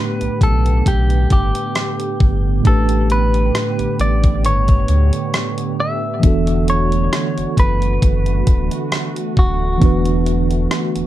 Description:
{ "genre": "contemporary R&B", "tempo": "67 BPM", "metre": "4/4", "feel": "swing 54% on 16ths", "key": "unclear", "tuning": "A4 = 439 Hz", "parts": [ { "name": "clean electric guitar", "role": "melody", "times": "0.0-11.1 s", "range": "F#4 to E5", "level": "-23 LUFS", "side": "equal", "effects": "digital delay" }, { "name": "mellow tine electric piano", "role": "accompaniment", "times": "0.0-11.1 s", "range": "A2 to B4", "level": "-21 LUFS", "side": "right 2 dB", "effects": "medium stereo tremolo" }, { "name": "warm analog pad", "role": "sustained chords", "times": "0.0-11.1 s", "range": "D3 to G4", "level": "-25 LUFS", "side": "right 3 dB", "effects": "chorus" }, { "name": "sub bass with octave", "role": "bass", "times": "0.2-11.0 s", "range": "D1 to D2", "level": "-17 LUFS", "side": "equal", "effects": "none" }, { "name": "gated 80s digital drum machine", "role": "drums", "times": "0.2-11.1 s", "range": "hi-hat, kick drum, rim click", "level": "-16 LUFS", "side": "equal", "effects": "none" } ], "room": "little or no reverb", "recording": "dark, warm production", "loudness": "-14 LUFS", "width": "side -13 dB against mid", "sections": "0.0-11.1 A section", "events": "none", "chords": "0.0 A9sus4; 6.2 E9sus4" }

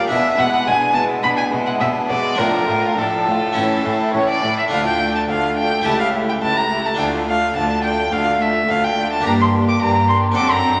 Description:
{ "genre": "classical, baroque-style concerto movement with solo episodes", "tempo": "106 BPM", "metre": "4/4", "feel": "straight", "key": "D minor", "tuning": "A4 = 440 Hz", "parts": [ { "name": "clear violin", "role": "melody", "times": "0.0-10.8 s", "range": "A4 to D6", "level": "-21 LUFS", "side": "equal", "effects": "none" }, { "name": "rich chamber violin section", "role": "melody", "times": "0.0-10.8 s", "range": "E4 to A4", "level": "-32 LUFS", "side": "equal", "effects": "none" }, { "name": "rich chamber violin section", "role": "second line", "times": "0.0-10.8 s", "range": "Bb3 to F4", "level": "-28 LUFS", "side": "equal", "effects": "none" }, { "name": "harpsichord", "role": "accompaniment", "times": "0.0-10.8 s", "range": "C#2 to A4", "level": "-25 LUFS", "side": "equal", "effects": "none" }, { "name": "rich chamber viola section", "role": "accompaniment", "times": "0.0-10.8 s", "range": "E3 to C4", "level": "-26 LUFS", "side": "equal", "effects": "none" }, { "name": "clear chamber cello section", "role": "bass", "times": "0.1-10.8 s", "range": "C#2 to B2", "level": "-29 LUFS", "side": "equal", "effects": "none" } ], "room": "wet recital hall reverb, RT60 1.5 s", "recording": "none", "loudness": "-18 LUFS", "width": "mono", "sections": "0.0-4.7 A section; 4.7-10.8 A section", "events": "none", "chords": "0.1 E7/B; 2.4 Dm/A; 3.6 A; 4.7 Dm; 5.9 A7/C#; 7.0 Dm; 9.2 Gm" }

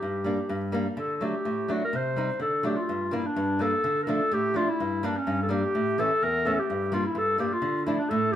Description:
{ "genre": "klezmer", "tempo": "126 BPM", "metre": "2/4", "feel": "straight", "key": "G dorian sharp4", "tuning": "A4 = 440 Hz", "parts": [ { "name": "mellow clarinet", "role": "melody", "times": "0.0-8.4 s", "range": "C#4 to C5", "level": "-26 LUFS", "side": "equal", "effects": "none" }, { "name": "flamenco guitar", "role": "accompaniment", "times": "0.0-8.4 s", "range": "E2 to F4", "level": "-28 LUFS", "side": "equal", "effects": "none" } ], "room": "wet stone room reverb, RT60 1.0 s", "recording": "band playing live in one room", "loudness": "-24 LUFS", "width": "side -11 dB against mid", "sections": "0.0-2.9 A section; 2.9-8.4 B section", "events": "none", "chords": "0.0 Gm; 1.0 D; 1.9 Cm; 2.4 D; 2.9 Gm; 3.8 Dm; 4.8 Gm; 5.7 A; 6.7 Gm; 7.6 Dm" }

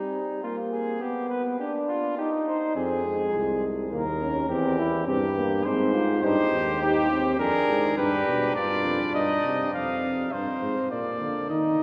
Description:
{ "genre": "classical, imitative canzona for brass ensemble", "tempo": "103 BPM", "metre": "3/4", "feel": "straight", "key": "F minor", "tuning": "A4 = 441 Hz", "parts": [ { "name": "clear flugelhorn", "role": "second line", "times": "0.0-9.7 s", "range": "Eb4 to C5", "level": "-33 LUFS", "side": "equal", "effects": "none" }, { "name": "mellow trombone", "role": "accompaniment", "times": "0.0-11.8 s", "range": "G3 to F4", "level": "-30 LUFS", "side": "equal", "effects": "none" }, { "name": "warm bass trombone", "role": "bass", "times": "2.8-11.8 s", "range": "C2 to Eb3", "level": "-31 LUFS", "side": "equal", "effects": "none" }, { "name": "warm trumpet", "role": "melody", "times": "6.2-11.8 s", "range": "G4 to F5", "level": "-29 LUFS", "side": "equal", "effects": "none" } ], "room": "wet cathedral reverb, RT60 6.2 s", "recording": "none", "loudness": "-26 LUFS", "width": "mono", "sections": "0.0-9.7 A section; 9.7-11.8 B section", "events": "none", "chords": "0.4 Bb5; 1.0 G/B; 2.2 Cm/Eb; 2.8 Fm; 3.9 Eb5; 4.5 C/E; 5.7 Fm/Ab; 6.2 Cm; 7.4 Bb/F; 8.0 G; 9.2 Cm/G; 9.7 F5; 10.9 Bb" }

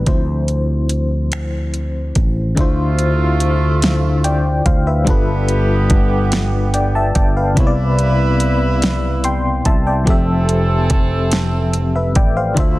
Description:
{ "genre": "slow six-eight R&B", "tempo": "48 BPM (dotted quarters)", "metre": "6/8", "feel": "straight", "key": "unclear", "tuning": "A4 = 440 Hz", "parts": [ { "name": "FM electric piano with tremolo", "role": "accompaniment", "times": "0.0-12.8 s", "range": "C3 to C6", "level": "-19 LUFS", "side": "left 2 dB", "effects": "none" }, { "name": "sustaining fretless electric bass", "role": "bass", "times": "0.0-12.8 s", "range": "G1 to D2", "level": "-17 LUFS", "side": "equal", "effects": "none" }, { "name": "smooth R&B drum kit", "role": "drums", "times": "0.1-12.8 s", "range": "finger snaps, hi-hat, kick drum, snare drum", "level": "-17 LUFS", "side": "equal", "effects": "overdrive" }, { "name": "warm horn section", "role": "stabs", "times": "2.6-12.8 s", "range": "C3 to B4", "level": "-24 LUFS", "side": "right 4 dB", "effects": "none" } ], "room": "little or no reverb", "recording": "dense, heavily limited modern master", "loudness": "-14 LUFS", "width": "side -18 dB against mid", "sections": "0.0-2.6 A section; 2.6-12.8 B section", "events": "FM electric piano solo 0.0-2.6", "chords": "0.1 Dm9; 5.1 G9; 7.6 Cmaj9; 10.1 Fmaj9" }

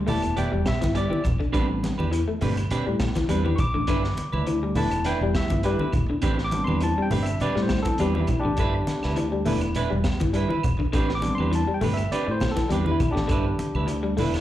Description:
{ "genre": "afrobeat", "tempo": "102 BPM", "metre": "4/4", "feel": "swing 54% on 16ths", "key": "A minor", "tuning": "A4 = 439 Hz", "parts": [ { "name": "overdriven tine electric piano", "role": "accompaniment", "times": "0.0-14.4 s", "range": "G3 to D6", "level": "-28 LUFS", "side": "left 1 dB", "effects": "slapback echo" }, { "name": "electric guitar through a small old amp", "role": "arpeggios", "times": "0.0-14.4 s", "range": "D3 to A3", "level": "-29 LUFS", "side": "left 4 dB", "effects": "ensemble chorus" }, { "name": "fingered electric bass", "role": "bass", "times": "0.0-14.4 s", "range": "E1 to A2", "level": "-26 LUFS", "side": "equal", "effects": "none" }, { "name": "clean electric guitar", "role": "stabs", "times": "0.1-14.4 s", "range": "B3 to D5", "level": "-30 LUFS", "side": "right 5 dB", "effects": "slapback echo" }, { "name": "crunchy breakbeat drum kit", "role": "drums", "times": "0.1-14.4 s", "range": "hi-hat, kick drum, snare drum", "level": "-29 LUFS", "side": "equal", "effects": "none" }, { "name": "congas", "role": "percussion", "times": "0.1-14.3 s", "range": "none", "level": "-30 LUFS", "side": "equal", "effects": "none" }, { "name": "claves", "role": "percussion", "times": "0.2-14.4 s", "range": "none", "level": "-43 LUFS", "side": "right 1 dB", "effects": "none" } ], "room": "light reverb, studio reverb", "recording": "live gig heard through the venue's PA, club reverb", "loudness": "-22 LUFS", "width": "side -13 dB against mid", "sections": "0.0-14.4 A section", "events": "tine electric piano solo 0.0-14.4", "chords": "0.0 G6; 1.5 Am11; 3.9 G6; 6.2 Am11; 8.6 G6; 10.9 Am11; 13.3 G6" }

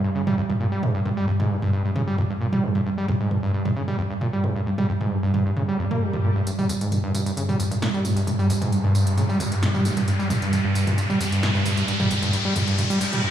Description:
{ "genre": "driving peak-time techno", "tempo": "133 BPM", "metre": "4/4", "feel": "straight", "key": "unclear", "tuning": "A4 = 440 Hz", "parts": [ { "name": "overdriven acid bass", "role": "riff", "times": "0.0-13.3 s", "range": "F2 to Bb3", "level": "-24 LUFS", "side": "equal", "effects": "distortion, dub echo" }, { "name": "swarming drone", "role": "drone", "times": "0.0-13.2 s", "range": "G2 to G3", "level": "-25 LUFS", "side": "right 1 dB", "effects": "built-in reverb" }, { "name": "techno drum kit", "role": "drums", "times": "0.3-13.2 s", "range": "hi-hat, snare drum, tambourine, toms", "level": "-28 LUFS", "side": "right 1 dB", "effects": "none" }, { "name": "swell, riser and reverse cymbal", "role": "sound effects", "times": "5.8-13.3 s", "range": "none", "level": "-29 LUFS", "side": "left 1 dB", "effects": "none" } ], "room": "wet lush hall reverb, RT60 2.0 s", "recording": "played on a big sound system in a bare room, large studio reverb, studio reverb", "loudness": "-20 LUFS", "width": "side -10 dB against mid", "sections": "0.0-6.5 A section; 6.5-13.3 B section", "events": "swell 5.8-6.5; build-up 6.5-13.3; riser 6.5-13.2; reverse cymbal 12.8-13.3", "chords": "none" }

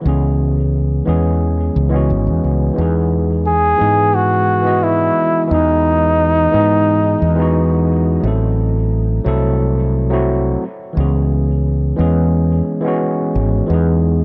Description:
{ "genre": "sunset chillout", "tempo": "88 BPM", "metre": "4/4", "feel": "straight", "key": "E major", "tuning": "A4 = 439 Hz", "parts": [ { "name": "overdriven tine electric piano", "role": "accompaniment", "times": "0.0-14.2 s", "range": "E3 to D#5", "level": "-20 LUFS", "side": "equal", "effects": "digital delay" }, { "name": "mellow fretless electric bass", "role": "bass", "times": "0.1-14.2 s", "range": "G#1 to G#2", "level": "-18 LUFS", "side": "equal", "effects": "none" }, { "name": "breathy flugelhorn", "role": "melody", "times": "3.5-7.9 s", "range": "D#4 to G#4", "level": "-17 LUFS", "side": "equal", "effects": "tape echo" } ], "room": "light reverb", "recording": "none", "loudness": "-15 LUFS", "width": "mono", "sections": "0.0-14.2 A section", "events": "none", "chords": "0.0 C#m7; 2.8 Emaj7; 8.2 Am6; 10.6 C#m7; 13.7 Emaj7" }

